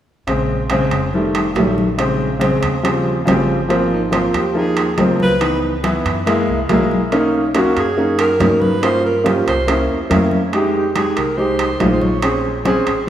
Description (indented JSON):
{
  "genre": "Afro-Cuban jazz",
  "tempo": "141 BPM",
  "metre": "4/4",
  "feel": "straight",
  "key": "unclear",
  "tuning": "A4 = 440 Hz",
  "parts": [
    { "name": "warm baby grand piano", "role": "accompaniment", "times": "0.3-13.0 s", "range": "Db3 to Ab4", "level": "-16 LUFS", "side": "equal", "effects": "none" },
    { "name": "upright bass", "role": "bass", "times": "0.3-13.1 s", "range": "F1 to G2", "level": "-26 LUFS", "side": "right 1 dB", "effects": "none" },
    { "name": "congas", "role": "percussion", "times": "0.3-13.1 s", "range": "none", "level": "-23 LUFS", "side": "left 2 dB", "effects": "none" },
    { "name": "timbales", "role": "percussion", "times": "0.3-13.1 s", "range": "none", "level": "-22 LUFS", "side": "right 5 dB", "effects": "none" },
    { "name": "breathy alto saxophone", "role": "melody", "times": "3.9-12.4 s", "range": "Eb4 to Db5", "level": "-21 LUFS", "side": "right 2 dB", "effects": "none" }
  ],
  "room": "wet lush hall reverb, RT60 2.7 s",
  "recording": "rough home demo mix, studio reverb",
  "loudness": "-14 LUFS",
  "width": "side -10 dB against mid",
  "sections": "0.3-3.7 A section; 3.7-13.1 B section",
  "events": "none",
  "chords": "0.3 Bbm9; 1.1 F7; 2.0 Bbm9; 2.8 Eb13; 3.7 Ab6; 5.4 Dbm9; 6.3 Gb9; 7.1 Bmaj7; 8.8 Gm7b5; 9.7 C7b9; 10.5 Fm9; 12.2 Bbm9",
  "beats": "| 0.28 0.71 1.14 1.57 | 1.99 2.42 2.85 3.28 | 3.70 4.13 4.56 4.98 | 5.41 5.84 6.26 6.69 | 7.12 7.54 7.97 8.40 | 8.82 9.25 9.68 10.10 | 10.53 10.95 11.38 11.81 | 12.23 12.66 13.08"
}